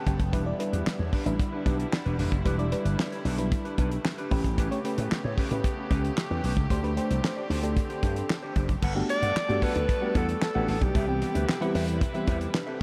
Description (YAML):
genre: early-eighties boogie funk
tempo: 113 BPM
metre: 4/4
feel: straight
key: E dorian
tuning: A4 = 440 Hz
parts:
  - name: FM electric piano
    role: accompaniment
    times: 0.0-12.8 s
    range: E3 to G5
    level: -35 LUFS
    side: equal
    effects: phaser
  - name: warm studio string section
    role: sustained chords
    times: 0.0-12.8 s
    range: C3 to B4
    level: -40 LUFS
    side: equal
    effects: none
  - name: mellow electric guitar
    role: riff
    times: 0.0-12.8 s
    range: C#4 to G5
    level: -39 LUFS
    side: equal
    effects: lush chorus
  - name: slap bass with an envelope filter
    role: bass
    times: 0.1-12.5 s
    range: E1 to A2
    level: -31 LUFS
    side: equal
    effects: none
  - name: damped 70s drum kit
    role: drums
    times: 0.1-12.7 s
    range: crash cymbal, handclaps, hi-hat, kick drum, snare drum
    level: -32 LUFS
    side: equal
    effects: none
  - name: warm alto saxophone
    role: melody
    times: 9.1-11.9 s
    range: G4 to D5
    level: -33 LUFS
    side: equal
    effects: none
room: light reverb, small room ambience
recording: none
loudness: -27 LUFS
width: mono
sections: 0.0-8.8 A section; 8.8-12.8 B section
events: FM electric piano fill 0.0-0.3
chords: 0.3 Em7; 4.3 A9; 6.7 D7sus4; 8.8 Gmaj9; 10.9 Cmaj7